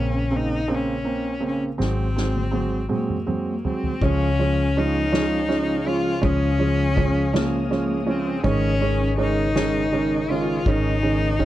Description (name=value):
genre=six-eight pop ballad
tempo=54 BPM (dotted quarters)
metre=6/8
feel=straight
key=Db major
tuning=A4 = 440 Hz
part: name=clear cello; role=melody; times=0.0-11.4 s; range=Bb3 to F4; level=-25 LUFS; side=left 3 dB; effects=none
part: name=felt-muted upright piano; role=accompaniment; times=0.0-11.4 s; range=Db3 to Db4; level=-24 LUFS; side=right 4 dB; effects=none
part: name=vintage muted fingered electric bass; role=bass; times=0.0-11.4 s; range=Ab1 to Db2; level=-25 LUFS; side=left 1 dB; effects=none
part: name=soft-mallet drum kit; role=drums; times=1.8-11.4 s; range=crash cymbal, kick drum, ride cymbal, snare drum, toms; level=-29 LUFS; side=left 1 dB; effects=none
part: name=tonewheel organ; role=sustained chords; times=4.0-11.4 s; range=Db3 to Eb6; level=-32 LUFS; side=left 4 dB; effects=chorus vibrato, lush chorus
room=small room reverb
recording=none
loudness=-20 LUFS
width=side -14 dB against mid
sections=0.0-4.0 A section; 4.0-11.4 B section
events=drum fill 1.8-4.0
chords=0.0 Bbmadd9; 1.8 Ab7; 4.0 Db; 8.4 Absus4